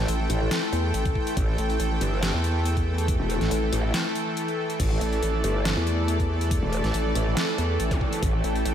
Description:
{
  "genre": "heavy wobble dubstep",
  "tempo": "140 BPM",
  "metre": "4/4",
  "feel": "swing 54% on 16ths, half-time",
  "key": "A minor",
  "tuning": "A4 = 438 Hz",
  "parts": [
    { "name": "supersaw pad", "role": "sustained chords", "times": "0.0-8.7 s", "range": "E3 to G5", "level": "-29 LUFS", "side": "right 1 dB", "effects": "sidechain pumping" },
    { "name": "growl bass", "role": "bass", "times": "0.0-8.4 s", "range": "E1 to A1", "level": "-25 LUFS", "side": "equal", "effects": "chorus, overdrive" },
    { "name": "deep dark ambient pad", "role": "texture", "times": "0.0-8.7 s", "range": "E4 to C6", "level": "-32 LUFS", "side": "left 3 dB", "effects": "chorus, built-in reverb, sidechain pumping" },
    { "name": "vowel-sweep wobble bass", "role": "bass", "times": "0.1-8.7 s", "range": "A1 to E2", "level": "-25 LUFS", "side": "equal", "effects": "chorus, overdrive" },
    { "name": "dubstep drum kit", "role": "drums", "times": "0.1-8.7 s", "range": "crash cymbal, hi-hat, snare drum", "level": "-31 LUFS", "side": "equal", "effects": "overdrive" },
    { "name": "electronic kick drum", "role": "drums", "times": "1.1-8.3 s", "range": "none", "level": "-26 LUFS", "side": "equal", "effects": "none" },
    { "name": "zap", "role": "sound effects", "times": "7.9-8.0 s", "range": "none", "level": "-36 LUFS", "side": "equal", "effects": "none" }
  ],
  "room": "light reverb",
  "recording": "none",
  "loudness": "-22 LUFS",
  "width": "side -9 dB against mid",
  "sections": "0.0-8.7 A section",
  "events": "break 3.9-4.8",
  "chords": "0.0 A5"
}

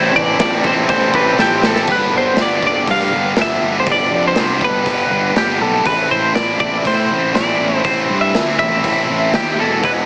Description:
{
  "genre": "indie rock",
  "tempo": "121 BPM",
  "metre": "4/4",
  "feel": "straight",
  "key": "A minor",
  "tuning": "A4 = 440 Hz",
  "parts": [
    { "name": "twelve-string electric guitar", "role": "melody", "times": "0.0-9.9 s", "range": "G4 to F5", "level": "-19 LUFS", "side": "equal", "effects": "harmonic tremolo, slapback echo" },
    { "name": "high-gain distorted guitar", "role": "riff", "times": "0.0-10.1 s", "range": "E2 to A4", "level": "-21 LUFS", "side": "equal", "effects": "distortion" },
    { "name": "raw garage guitar", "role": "riff", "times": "0.0-1.9, 9.8-10.1 s", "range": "E2 to G4", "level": "-23 LUFS", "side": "equal", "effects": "overdrive, lush chorus, slapback echo" },
    { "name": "fuzz fingered electric bass", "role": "bass", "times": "0.0-10.1 s", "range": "E1 to A2", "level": "-25 LUFS", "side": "equal", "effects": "overdrive" },
    { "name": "raw garage drum kit", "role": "drums", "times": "0.4-10.0 s", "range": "crash cymbal, hi-hat, kick drum, snare drum", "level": "-23 LUFS", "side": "equal", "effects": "none" }
  ],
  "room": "light reverb, small room ambience",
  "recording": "heavily compressed radio sound, multiband compression, small speaker sound",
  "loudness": "-15 LUFS",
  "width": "mono",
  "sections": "0.0-1.9 A section; 1.9-10.1 B section",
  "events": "drum fill 1.4-1.9",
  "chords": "0.0 Am7; 1.9 G; 5.9 Am"
}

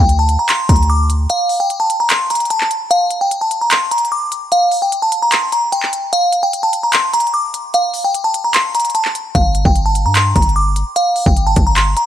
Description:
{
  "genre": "hip hop, trap",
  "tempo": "149 BPM",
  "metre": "4/4",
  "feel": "half-time",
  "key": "G minor",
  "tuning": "A4 = 444 Hz",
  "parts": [
    { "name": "glassy synth bell", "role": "melody", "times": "0.0-12.1 s", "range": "F5 to D6", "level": "-14 LUFS", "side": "equal", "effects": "chorus, ping-pong delay" },
    { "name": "warm 808-style bass", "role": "bass", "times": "0.0-1.3, 9.3-12.0 s", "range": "G1 to G2", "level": "-14 LUFS", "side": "equal", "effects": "none" },
    { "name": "trap drum kit", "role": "drums", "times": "0.1-12.1 s", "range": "handclaps, hi-hat, kick drum", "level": "-17 LUFS", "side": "equal", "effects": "none" }
  ],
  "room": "little or no reverb",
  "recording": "none",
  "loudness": "-12 LUFS",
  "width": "side -11 dB against mid",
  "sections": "0.0-12.1 A section",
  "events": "break 1.3-2.9; kick muted 2.9-9.3",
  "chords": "none"
}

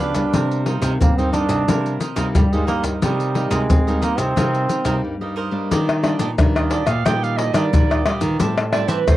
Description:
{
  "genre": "samba and choro",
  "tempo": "89 BPM",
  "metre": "4/4",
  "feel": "straight",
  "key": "C minor, Eb major from 5.7 s",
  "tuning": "A4 = 440 Hz",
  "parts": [
    { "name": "bright trombone", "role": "melody", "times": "0.0-5.2 s", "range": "G3 to D4", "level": "-22 LUFS", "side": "right 2 dB", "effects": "none" },
    { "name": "cavaquinho", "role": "accompaniment", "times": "0.0-9.0 s", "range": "D4 to A5", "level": "-28 LUFS", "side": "right 5 dB", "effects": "none" },
    { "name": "nylon-string guitar", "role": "accompaniment", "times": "0.0-9.2 s", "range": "G2 to E4", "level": "-25 LUFS", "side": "left 1 dB", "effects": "none" },
    { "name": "nylon-string guitar", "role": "bass", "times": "0.0-9.2 s", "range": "A2 to C4", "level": "-23 LUFS", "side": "equal", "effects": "none" },
    { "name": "maracas, surdo, pandeiro and tamborim", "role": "percussion", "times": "0.1-9.2 s", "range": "none", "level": "-20 LUFS", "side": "left 2 dB", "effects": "none" },
    { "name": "clear clarinet", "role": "second line", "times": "6.6-9.2 s", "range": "Bb4 to G5", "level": "-24 LUFS", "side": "right 8 dB", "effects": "none" }
  ],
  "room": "light reverb",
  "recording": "dry, close 1970s-style studio recording",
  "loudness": "-16 LUFS",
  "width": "side -15 dB against mid",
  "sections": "0.0-5.7 A section; 5.7-9.2 B section",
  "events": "break 5.0-5.7; clarinet solo 5.7-9.2",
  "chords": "0.3 Cm7; 5.7 Ebmaj7; 8.4 Am7"
}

